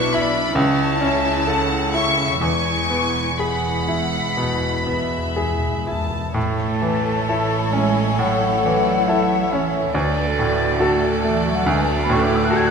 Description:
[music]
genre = classical, romantic movement for piano and orchestra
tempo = 60-72 BPM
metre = 4/4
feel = rubato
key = A major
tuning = A4 = 441 Hz
[part]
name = bright baby grand piano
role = melody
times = 0.0-12.7 s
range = B1 to B4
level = -21 LUFS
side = equal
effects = none
[part]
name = dark studio violin section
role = melody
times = 0.0-12.7 s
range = A4 to C#6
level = -25 LUFS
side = left 2 dB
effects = none
[part]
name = warm chamber violin section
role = second line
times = 0.0-12.7 s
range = A4 to A5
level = -27 LUFS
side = left 1 dB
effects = none
[part]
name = dark studio viola section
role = accompaniment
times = 0.0-12.7 s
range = G#3 to F#4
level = -27 LUFS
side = right 1 dB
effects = none
[part]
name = rich studio cello section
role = bass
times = 0.0-12.7 s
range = E2 to G#4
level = -27 LUFS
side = right 4 dB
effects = none
[part]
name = warm studio double bass section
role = bass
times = 0.0-12.7 s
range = E1 to D2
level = -28 LUFS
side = right 6 dB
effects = none
[part]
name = timpani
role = percussion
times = 2.4-6.3 s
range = E2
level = -30 LUFS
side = left 2 dB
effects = none
[part]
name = mellow hollow silver concert flute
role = second line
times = 6.4-12.7 s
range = D5 to G#6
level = -24 LUFS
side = left 4 dB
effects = none
[sound]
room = moderate scoring stage reverb, RT60 1.9 s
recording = none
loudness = -17 LUFS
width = side -6 dB against mid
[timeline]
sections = 0.0-6.4 A section; 6.4-12.7 B section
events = timpani fill 2.4-6.4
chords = 0.0 E5/B; 0.6 A/C#; 2.4 E; 6.4 A; 9.9 D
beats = 0.57 1.48 | 2.41 3.40 4.38 5.37 | 6.36 7.28 8.19 9.07 | 9.94 10.79 11.65 12.50

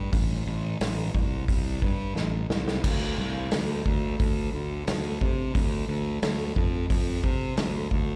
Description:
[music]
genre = blues rock power trio and southern rock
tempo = 89 BPM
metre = 4/4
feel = straight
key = unclear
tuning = A4 = 440 Hz
[part]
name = fuzz fingered electric bass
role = bass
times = 0.0-8.2 s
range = A1 to C3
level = -30 LUFS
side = equal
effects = overdrive
[part]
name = vintage drum kit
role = drums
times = 0.1-8.1 s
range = crash cymbal, hi-hat, kick drum, snare drum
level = -30 LUFS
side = equal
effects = none
[sound]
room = little or no reverb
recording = live gig heard through the venue's PA, recital hall reverb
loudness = -27 LUFS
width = mono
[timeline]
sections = 0.0-8.2 A section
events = drum fill 2.2-2.8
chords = none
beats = | 0.14 0.81 1.49 2.17 | 2.84 3.52 4.20 4.87 | 5.55 6.22 6.90 7.57

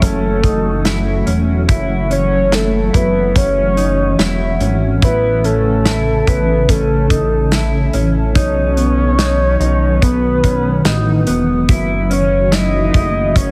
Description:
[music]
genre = dream pop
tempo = 72 BPM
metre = 4/4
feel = straight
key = unclear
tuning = A4 = 440 Hz
[part]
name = soft octave-layered synth lead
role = melody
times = 0.0-13.5 s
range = A4 to D#5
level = -20 LUFS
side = equal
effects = chorus, phaser, digital delay
[part]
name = shimmering ambient pad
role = sustained chords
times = 0.0-13.5 s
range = C#3 to A4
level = -22 LUFS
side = equal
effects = chorus, built-in reverb, phaser
[part]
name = mellow electric guitar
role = arpeggios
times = 0.0-13.5 s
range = B3 to E4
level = -24 LUFS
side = equal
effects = analog chorus, digital delay
[part]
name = chorused synth bass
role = bass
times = 0.0-13.5 s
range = E1 to B1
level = -20 LUFS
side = equal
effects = none
[part]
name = loose indie drum kit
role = drums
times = 0.0-13.5 s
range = hi-hat, kick drum, snare drum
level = -18 LUFS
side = equal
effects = none
[sound]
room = light reverb, small room ambience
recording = heavily compressed radio sound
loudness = -14 LUFS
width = mono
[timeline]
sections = 0.0-13.5 A section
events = none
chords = 0.0 F#m7; 5.0 A; 8.4 B7; 11.7 F#m7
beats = 0.02 0.86 | 1.69 2.52 3.36 4.19 | 5.02 5.86 6.69 7.52 | 8.36 9.19 10.02 10.86 | 11.69 12.52 13.36

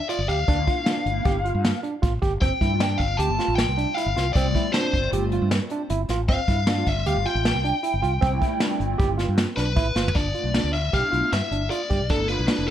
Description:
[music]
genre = progressive instrumental, band music in an uneven meter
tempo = 155 BPM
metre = 5/4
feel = straight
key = G mixolydian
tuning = A4 = 441 Hz
[part]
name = biting lead guitar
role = melody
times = 0.0-12.7 s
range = A4 to A5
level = -26 LUFS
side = left 2 dB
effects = overdrive, digital delay
[part]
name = overdriven tine electric piano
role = arpeggios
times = 0.1-12.7 s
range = C4 to G4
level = -29 LUFS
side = right 5 dB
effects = none
[part]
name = vintage brush drum kit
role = drums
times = 0.1-12.7 s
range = hi-hat, kick drum, snare drum, toms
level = -24 LUFS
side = equal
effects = none
[part]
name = mellow fretless electric bass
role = bass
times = 0.2-12.7 s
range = F1 to G2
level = -26 LUFS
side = equal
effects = none
[part]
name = hollow soft pad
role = accompaniment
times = 0.5-12.6 s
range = G3 to F4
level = -32 LUFS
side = left 1 dB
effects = ensemble chorus
[sound]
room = moderate studio reverb, RT60 0.6 s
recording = none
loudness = -20 LUFS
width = side -11 dB against mid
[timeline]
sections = 0.0-10.2 A section; 10.2-12.7 B section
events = drum fill 10.0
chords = 0.0 G7; 2.4 Fadd9/G; 10.2 G7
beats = 0.10 | 0.48 0.87 1.26 1.65 2.03 | 2.42 2.81 3.19 3.58 3.97 | 4.36 4.74 5.13 5.52 5.90 | 6.29 6.68 7.06 7.45 7.83 | 8.22 8.61 8.99 9.38 9.77 | 10.16 10.54 10.93 11.32 11.71 | 12.10 12.48

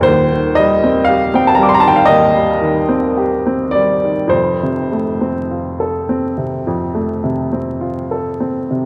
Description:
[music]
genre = classical, romantic nocturne for solo piano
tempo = 50-62 BPM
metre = 4/4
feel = rubato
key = unclear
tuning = A4 = 439 Hz
[part]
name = warm upright piano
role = solo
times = 0.0-8.9 s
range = Eb1 to D6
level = -15 LUFS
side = equal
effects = none
[sound]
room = wet scoring stage reverb, RT60 1.6 s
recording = worn, warbling old tape, cassette tape, vinyl crackle, warbly pitch drift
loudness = -15 LUFS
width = mono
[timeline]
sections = 0.0-8.9 A section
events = none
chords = 0.1 Cm/Eb; 4.3 F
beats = | 0.07 1.09 2.08 3.18 | 4.33 5.50 6.66 7.81

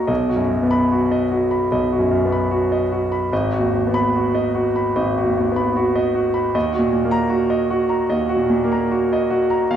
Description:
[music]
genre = classical, romantic character piece for solo piano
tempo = 75 BPM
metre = 4/4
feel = rubato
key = unclear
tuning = A4 = 440 Hz
[part]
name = bright concert grand piano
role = solo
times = 0.0-9.8 s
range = Ab1 to B5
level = -17 LUFS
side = equal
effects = none
[sound]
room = moderate recital hall reverb, RT60 1.4 s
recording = recorded in a church or concert hall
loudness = -17 LUFS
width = side -9 dB against mid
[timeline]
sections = 0.0-9.8 A section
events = none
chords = 0.1 B; 3.3 Abm7; 6.5 Ebm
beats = | 0.10 0.91 1.71 2.51 | 3.31 4.13 4.96 5.76 | 6.55 7.34 8.12 8.93 | 9.72

